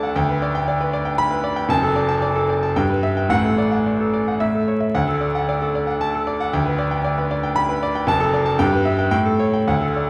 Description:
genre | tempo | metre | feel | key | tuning
classical, virtuoso piano study | 105-119 BPM | 3/4 | rubato | D major | A4 = 436 Hz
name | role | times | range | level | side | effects
clear grand piano | solo | 0.0-10.1 s | F#1 to B5 | -20 LUFS | equal | none
room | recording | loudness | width
wet recital hall reverb, RT60 1.7 s | heard from further back in the room, vinyl crackle | -20 LUFS | mono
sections
0.0-10.1 A section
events
none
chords
0.2 G/D; 1.7 D/F#; 2.8 Em/G; 3.3 D/A; 4.4 A; 4.9 D; 6.5 G/D; 8.1 D/F#; 8.6 Em/G; 9.1 A7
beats
| 0.16 0.68 1.19 | 1.70 2.23 2.76 | 3.30 3.85 4.40 | 4.95 5.48 6.01 | 6.54 7.05 7.56 | 8.08 8.59 9.12 | 9.67

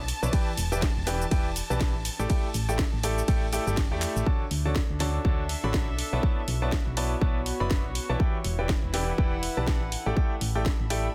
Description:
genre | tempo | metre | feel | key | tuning
piano house | 122 BPM | 4/4 | swing 58% on 16ths | D major | A4 = 440 Hz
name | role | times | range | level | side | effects
bright studio string section | sustained chords | 0.0-4.3 s | A5 to A6 | -43 LUFS | equal | sidechain pumping
solid FM bass | bass | 0.0-11.1 s | E1 to E2 | -32 LUFS | equal | sidechain pumping
house drum kit | drums | 0.1-11.0 s | handclaps, hi-hat, ride cymbal, shaker, snare drum | -36 LUFS | equal | none
bright grand piano | riff | 0.2-11.1 s | D3 to B5 | -34 LUFS | equal | sidechain pumping, dub echo
electronic kick drum | drums | 0.3-10.8 s | none | -28 LUFS | equal | none
warm chamber string section | texture | 4.3-11.1 s | B3 to B5 | -39 LUFS | equal | sidechain pumping
room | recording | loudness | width
little or no reverb | dense, heavily limited modern master | -27 LUFS | mono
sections
0.0-4.3 A section; 4.3-11.1 B section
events
drop 0.0-4.3; drum fill 4.0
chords
0.3 Em7; 2.1 A7sus4; 4.3 Dmaj7; 6.0 Bm11; 8.2 Em7; 9.9 A7sus4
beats
| 0.33 0.82 1.31 1.81 | 2.30 2.79 3.28 3.77 | 4.26 4.76 5.25 5.74 | 6.23 6.72 7.21 7.71 | 8.20 8.69 9.18 9.67 | 10.17 10.66

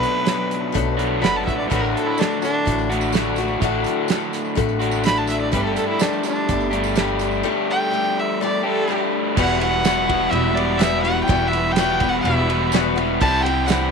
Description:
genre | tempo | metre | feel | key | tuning
folk rock and heartland rock | 125 BPM | 4/4 | straight | E minor | A4 = 440 Hz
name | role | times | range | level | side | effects
rich fiddle | melody | 0.0-13.9 s | D4 to B5 | -23 LUFS | right 1 dB | none
picked old ladder-braced acoustic guitar | accompaniment | 0.0-13.9 s | E2 to G4 | -25 LUFS | left 13 dB | none
crunchy overdriven guitar | riff | 0.0-13.9 s | E2 to G4 | -22 LUFS | right 1 dB | none
damped 70s drum kit | drums | 0.0-13.8 s | crash cymbal, hi-hat, kick drum, ride cymbal, snare drum | -24 LUFS | right 5 dB | none
upright bass | bass | 0.8-13.9 s | E1 to C2 | -25 LUFS | right 1 dB | none
tambourine | percussion | 1.7-13.8 s | none | -37 LUFS | right 14 dB | none
room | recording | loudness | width
light reverb, studio reverb | 1960s-style stereo with parts hard left and right | -17 LUFS | side -5 dB against mid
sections
0.0-9.4 A section; 9.4-13.9 B section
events
fiddle solo 0.0-9.4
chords
0.0 Bm7; 1.7 D/A; 5.5 Gsus2; 9.4 Emadd9; 13.2 C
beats
0.27 0.75 1.22 | 1.70 2.18 2.66 3.13 | 3.61 4.09 4.57 5.05 | 5.53 6.01 6.49 6.96 | 7.44 7.92 8.40 8.88 | 9.36 9.84 10.32 10.80 | 11.28 11.76 12.24 12.72 | 13.20 13.68

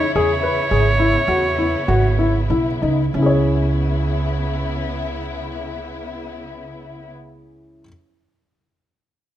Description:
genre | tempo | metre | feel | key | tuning
contemporary instrumental, chamber music in an uneven meter | 92-110 BPM | 5/4 | straight | C# minor | A4 = 440 Hz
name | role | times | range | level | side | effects
clear oboe | melody | 0.0-2.5 s | C#5 | -21 LUFS | right 3 dB | none
warm studio string section | sustained chords | 0.0-7.1 s | C#3 to E4 | -27 LUFS | left 2 dB | none
dark baby grand piano | arpeggios | 0.0-7.9 s | C#4 to C#5 | -21 LUFS | left 3 dB | none
upright bass | bass | 0.0-7.8 s | G#1 to E2 | -21 LUFS | right 2 dB | none
room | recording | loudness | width
little or no reverb | close, detailed microphones | -16 LUFS | side -12 dB against mid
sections
0.0-3.1 A section; 3.1-6.3 B section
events
slowing down 0.0-3.1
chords
0.2 C#m7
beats
| 0.15 0.71 1.28 1.88 2.50 | 3.14 3.79 4.42 5.06 5.70

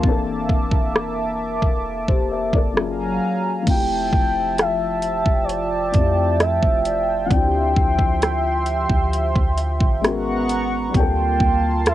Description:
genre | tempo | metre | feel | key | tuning
contemporary R&B | 66 BPM | 4/4 | straight | F major | A4 = 440 Hz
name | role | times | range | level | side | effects
felt-muted upright piano | accompaniment | 0.0-11.9 s | E3 to E5 | -26 LUFS | left 6 dB | cassette tape
chorused pulse-width pad | sustained chords | 0.0-11.9 s | F3 to D6 | -24 LUFS | right 1 dB | cassette tape
soft 808-style bass | bass | 0.0-11.9 s | E1 to F2 | -26 LUFS | equal | none
trap drum kit | drums | 0.0-11.9 s | crash cymbal, hi-hat, kick drum, rim click | -19 LUFS | equal | cassette tape
gliding portamento lead | melody | 3.7-11.9 s | Db5 to G5 | -22 LUFS | equal | chorus, phaser, tape echo
large celesta | texture | 4.6-10.4 s | D5 to G5 | -34 LUFS | right 1 dB | none
room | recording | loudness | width
light reverb | home recording on cassette | -17 LUFS | side -13 dB against mid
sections
0.0-3.7 A section; 3.7-11.9 B section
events
none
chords
0.0 C13/E; 2.8 Gbmaj9; 3.7 Fmaj9; 7.3 Dm11; 10.0 Abm11; 10.9 Gm11/D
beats
| 0.04 0.94 1.85 2.76 | 3.67 4.58 5.49 6.40 | 7.31 8.22 9.13 10.04 | 10.94 11.85

